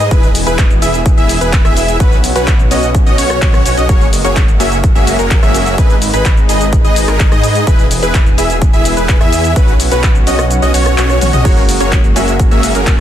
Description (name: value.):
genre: EDM, festival progressive house.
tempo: 127 BPM.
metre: 4/4.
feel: straight.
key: B major.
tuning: A4 = 439 Hz.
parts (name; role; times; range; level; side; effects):
lush unison pad; sustained chords; 0.0-13.0 s; E3 to B4; -21 LUFS; equal; chorus, sidechain pumping.
wide unison lead; arpeggios; 0.0-13.0 s; A#4 to E5; -19 LUFS; equal; sidechain pumping, digital delay.
big supersaw lead; riff; 0.0-12.9 s; A#3 to E5; -17 LUFS; equal; sidechain pumping, digital delay.
wide detuned saw bass; bass; 0.0-13.0 s; E1 to G#2; -17 LUFS; equal; chorus, sidechain pumping.
big-room dance drum kit; drums; 0.0-13.0 s; crash cymbal, handclaps, hi-hat, rim click, shaker, toms; -19 LUFS; left 1 dB; none.
electronic kick drum; drums; 0.1-13.0 s; none; -10 LUFS; equal; none.
warm concert grand piano; accompaniment; 11.4-13.0 s; G#3 to F#4; -20 LUFS; right 3 dB; sidechain pumping, digital delay.
room: digital ambience.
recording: dense, heavily limited modern master.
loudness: -9 LUFS.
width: side -11 dB against mid.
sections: 0.0-13.0 A section.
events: kick drops out 10.5-11.5; drum fill 11.2.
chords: 0.1 E; 2.0 Bsus2; 3.9 F#add9; 5.8 G#m; 7.7 E; 9.6 Bsus2; 11.5 F#add9.